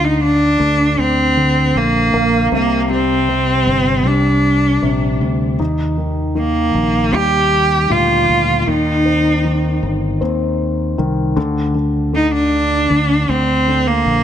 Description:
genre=pop ballad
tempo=78 BPM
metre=4/4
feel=straight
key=unclear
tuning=A4 = 438 Hz
part: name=clear cello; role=melody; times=0.0-14.2 s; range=Bb3 to G4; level=-15 LUFS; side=right 1 dB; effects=none
part: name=dark baby grand piano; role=accompaniment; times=0.0-14.2 s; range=Bb2 to Eb4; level=-19 LUFS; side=left 2 dB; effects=none
part: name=fingered electric bass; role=bass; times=0.0-14.2 s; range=G1 to Eb2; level=-20 LUFS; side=equal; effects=none
room=light reverb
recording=none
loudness=-13 LUFS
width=side -9 dB against mid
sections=0.0-14.2 A section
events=none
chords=0.0 Bbadd9; 2.5 C5; 5.6 Eb; 8.7 Cm; 11.4 Bbadd9 (rootless)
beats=0.21 0.98 1.75 | 2.52 3.29 4.06 4.83 | 5.60 6.37 7.14 7.91 | 8.68 9.44 10.21 10.98 | 11.75 12.52 13.29 14.06

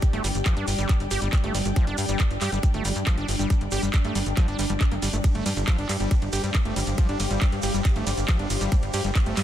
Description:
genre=psychedelic trance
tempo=138 BPM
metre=4/4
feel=straight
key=unclear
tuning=A4 = 440 Hz
part: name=swarming drone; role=sustained chords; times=0.0-9.4 s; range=G3 to A4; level=-34 LUFS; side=left 1 dB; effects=built-in reverb, sidechain pumping
part: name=drum and bass drum kit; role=drums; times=0.0-9.4 s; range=handclaps, hi-hat, ride cymbal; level=-32 LUFS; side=equal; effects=none
part: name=electronic kick drum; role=drums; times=0.0-9.2 s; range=none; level=-21 LUFS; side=equal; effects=none
part: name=shekere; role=percussion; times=0.0-9.4 s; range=none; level=-36 LUFS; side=right 5 dB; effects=none
part: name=downlifter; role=sound effects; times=0.0-1.8 s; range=none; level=barely audible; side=none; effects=none
part: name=ethereal airy pad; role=texture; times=0.0-9.4 s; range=G3 to G5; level=-33 LUFS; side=left 1 dB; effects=ensemble chorus, built-in reverb, sidechain pumping
part: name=overdriven acid bass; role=riff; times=0.1-9.4 s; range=F3 to G4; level=-31 LUFS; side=right 1 dB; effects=auto-pan, sidechain pumping, dub echo
part: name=tight sequencer bass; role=bass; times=0.1-9.4 s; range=G1 to G2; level=-28 LUFS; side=equal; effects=none
room=digital ambience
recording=dense, heavily limited modern master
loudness=-22 LUFS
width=side -11 dB against mid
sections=0.0-9.4 A section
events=none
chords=0.0 G5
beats=| 0.02 0.46 0.89 1.33 | 1.76 2.20 2.63 3.07 | 3.50 3.94 4.37 4.81 | 5.24 5.68 6.11 6.54 | 6.98 7.42 7.85 8.28 | 8.72 9.15

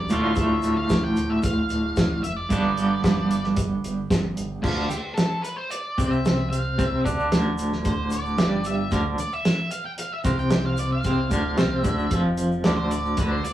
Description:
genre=psychedelic rock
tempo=112 BPM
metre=4/4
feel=straight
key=D dorian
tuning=A4 = 440 Hz
part: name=octave-fuzz lead guitar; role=melody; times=0.0-13.5 s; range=F4 to G5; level=-30 LUFS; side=equal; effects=distortion
part: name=twangy electric guitar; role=riff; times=0.0-13.5 s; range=D2 to G4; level=-23 LUFS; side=right 1 dB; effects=tremolo
part: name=growling fingered electric bass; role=bass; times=0.0-13.5 s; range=D1 to D2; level=-33 LUFS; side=equal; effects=overdrive
part: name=cloth-damped thuddy drum kit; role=drums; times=0.1-13.5 s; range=crash cymbal, hi-hat, kick drum, snare drum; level=-25 LUFS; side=equal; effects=none
part: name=egg shaker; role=percussion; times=0.1-13.5 s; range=none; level=-46 LUFS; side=left 5 dB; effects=none
room=wet small room reverb, RT60 0.5 s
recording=rough rehearsal-room recording, small room ambience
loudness=-21 LUFS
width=side -12 dB against mid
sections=0.0-4.6 A section; 4.6-13.5 B section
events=lead electric guitar solo 4.6-13.5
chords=0.1 Dm; 2.5 G; 4.6 Dm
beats=| 0.36 0.90 1.43 1.97 | 2.50 3.04 3.57 4.10 | 4.64 5.17 5.71 6.24 | 6.78 7.31 7.84 8.38 | 8.91 9.45 9.98 10.52 | 11.05 11.59 12.12 12.65 | 13.19

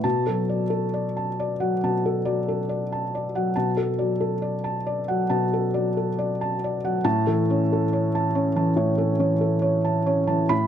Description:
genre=neoclassical minimalist piano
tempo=69 BPM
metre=4/4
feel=rubato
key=B minor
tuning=A4 = 441 Hz
part: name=felt-muted upright piano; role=solo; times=0.0-10.7 s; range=A2 to B5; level=-21 LUFS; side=equal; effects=none
room=light reverb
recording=close, detailed microphones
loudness=-21 LUFS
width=side -9 dB against mid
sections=0.0-10.7 A section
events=none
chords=0.0 Bm7; 7.0 A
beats=| 0.04 0.93 1.80 2.67 | 3.54 4.42 5.30 6.18 | 7.05 7.92 8.78 9.65 | 10.52

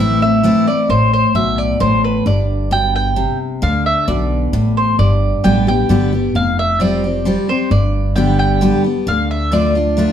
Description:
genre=bluegrass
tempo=132 BPM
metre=3/4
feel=straight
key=unclear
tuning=A4 = 440 Hz
part: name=mandolin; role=melody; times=0.0-10.1 s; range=B4 to G5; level=-18 LUFS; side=right 1 dB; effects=none
part: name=picked steel-string acoustic guitar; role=accompaniment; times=0.0-10.1 s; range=F2 to G4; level=-16 LUFS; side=left 2 dB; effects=none
part: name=upright bass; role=bass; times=0.0-10.1 s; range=F1 to D2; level=-18 LUFS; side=equal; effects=none
room=wet studio reverb, RT60 0.9 s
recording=heard from further back in the room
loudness=-13 LUFS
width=side -9 dB against mid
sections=0.0-2.3 A section; 2.3-10.1 B section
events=none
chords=0.0 Am; 0.9 Asus2; 2.3 G; 3.6 D5; 5.0 Gadd9; 6.3 Fsus2; 7.7 G; 9.1 Dm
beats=0.45 | 0.90 1.35 1.81 | 2.26 2.72 3.17 | 3.63 4.08 4.53 | 4.99 5.44 5.89 | 6.35 6.80 7.26 | 7.71 8.16 8.62 | 9.07 9.53 9.98

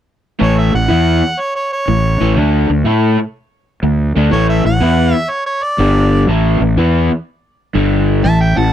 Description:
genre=rock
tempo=122 BPM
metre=4/4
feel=swing 68% on 8ths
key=A mixolydian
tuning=A4 = 440 Hz
part: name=warm harmonica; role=melody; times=0.4-8.7 s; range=C#5 to A5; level=-18 LUFS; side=right 1 dB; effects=overdrive
part: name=crunchy overdriven guitar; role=riff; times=0.4-8.7 s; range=G2 to A4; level=-14 LUFS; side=left 1 dB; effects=none
part: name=fuzz fingered electric bass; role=bass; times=0.4-8.7 s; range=G1 to A2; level=-14 LUFS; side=equal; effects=overdrive
part: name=dark smooth lead guitar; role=second line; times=8.2-8.7 s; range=E5 to F#5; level=-22 LUFS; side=right 5 dB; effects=overdrive
room=little or no reverb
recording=dry, close 1970s-style studio recording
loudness=-11 LUFS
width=side -10 dB against mid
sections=0.4-8.2 A section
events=none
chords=0.4 A; 2.4 D5; 4.3 A5; 5.8 G5; 6.3 A5; 7.8 G5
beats=| 0.41 0.90 1.39 1.88 | 2.37 2.86 3.35 3.84 | 4.33 4.82 5.31 5.80 | 6.29 6.78 7.27 7.76 | 8.25

